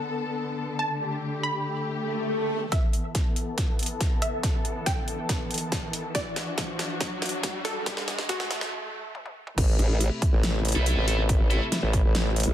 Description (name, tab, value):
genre	heavy wobble dubstep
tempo	140 BPM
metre	4/4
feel	half-time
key	A dorian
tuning	A4 = 440 Hz
part	wide unison pluck	melody	0.0-9.5 s	F#4 to B5	-33 LUFS	right 1 dB	tape echo
part	dark studio string section	sustained chords	0.0-12.5 s	C3 to A4	-32 LUFS	left 2 dB	sidechain pumping, low-pass filter
part	swell and riser	sound effects	2.0-8.7 s	none	-34 LUFS	right 1 dB	none
part	dubstep drum kit	drums	2.7-12.5 s	crash cymbal, hi-hat, snare drum, toms	-31 LUFS	equal	high-pass filter on snare, low-pass filter on snare, high-pass filter on hats, low-pass filter on hats, high-pass filter on toms, low-pass filter on toms, high-pass filter on cymbals, low-pass filter on cymbals
part	electronic kick drum	drums	2.7-12.0 s	none	-26 LUFS	equal	none
part	formant-sweep wobble bass	bass	9.6-12.5 s	A1	-25 LUFS	equal	chorus, overdrive
part	formant-sweep wobble bass	bass	9.8-12.5 s	A1 to B1	-23 LUFS	equal	chorus, overdrive
part	high-gain distorted guitar	stabs	10.8-11.6 s	A3 to A4	-31 LUFS	right 1 dB	distortion, tape echo
room	light reverb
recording	dense, heavily limited modern master, high-pass filter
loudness	-24 LUFS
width	side -11 dB against mid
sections	0.0-2.7 A section; 2.7-9.6 B section; 9.6-12.5 C section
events	swell 2.0-2.7; build-up 2.7-9.6; drum fill 2.7-8.7, 9.1-9.6; riser 2.7-8.7; filter sweep on string section 2.7-9.6; filter sweep on synth pluck 2.7-9.6; filter sweep 2.7-9.6; break 8.7-9.6; drop 9.6-12.5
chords	0.0 Bm7; 1.0 Gsus2; 2.7 Asus2; 6.1 Dadd9; 9.6 Am